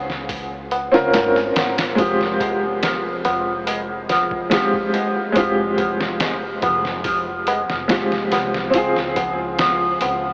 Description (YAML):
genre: trip hop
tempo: 71 BPM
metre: 4/4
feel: straight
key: F minor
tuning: A4 = 443 Hz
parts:
  - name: clear upright piano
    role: accompaniment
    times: 0.0-10.3 s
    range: Ab3 to Bb4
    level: -23 LUFS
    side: equal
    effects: tremolo, tape echo
  - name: upright bass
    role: bass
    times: 0.0-10.3 s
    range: F1 to Db2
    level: -39 LUFS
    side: equal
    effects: none
  - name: trip hop sampler-style drum kit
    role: drums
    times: 0.1-10.2 s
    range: hi-hat, kick drum, snare drum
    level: -28 LUFS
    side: equal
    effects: none
  - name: tabla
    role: percussion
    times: 0.1-10.3 s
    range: none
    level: -29 LUFS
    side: equal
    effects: none
  - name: electric guitar with an envelope filter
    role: arpeggios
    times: 2.0-10.1 s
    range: F3 to C4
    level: -25 LUFS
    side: equal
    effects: lush chorus, tape echo
room: wet huge ambient reverb, RT60 7.3 s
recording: dreamy mix soaked in reverb, AM radio sound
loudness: -20 LUFS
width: mono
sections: 0.0-10.3 A section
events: none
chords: 0.0 Dbmaj7; 2.0 Fmadd9; 8.7 Dbmaj7